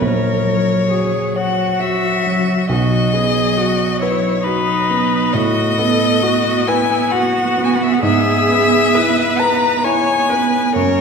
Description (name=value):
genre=classical, slow romantic movement for piano quartet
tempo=67 BPM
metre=3/4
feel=rubato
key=B major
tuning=A4 = 438 Hz
part: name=rich violin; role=melody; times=0.0-11.0 s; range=B4 to A#5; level=-18 LUFS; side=left 5 dB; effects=none
part: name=rich cello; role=second line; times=0.0-11.0 s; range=F#3 to B3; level=-22 LUFS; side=right 3 dB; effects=none
part: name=warm baby grand piano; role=accompaniment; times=0.0-11.0 s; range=A#1 to C#5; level=-18 LUFS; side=right 2 dB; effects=none
part: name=warm viola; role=accompaniment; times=0.0-11.0 s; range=D#4 to C#5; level=-21 LUFS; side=right 2 dB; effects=none
room=wet recital hall reverb, RT60 1.5 s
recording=recorded in a church or concert hall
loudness=-13 LUFS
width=side -5 dB against mid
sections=0.0-11.0 A section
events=none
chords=0.0 F#/A#; 2.7 B; 5.3 B7/A; 8.0 E/G#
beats=| 0.02 0.92 1.81 | 2.70 3.58 4.45 | 5.34 6.23 7.13 | 8.02 8.95 9.84 | 10.76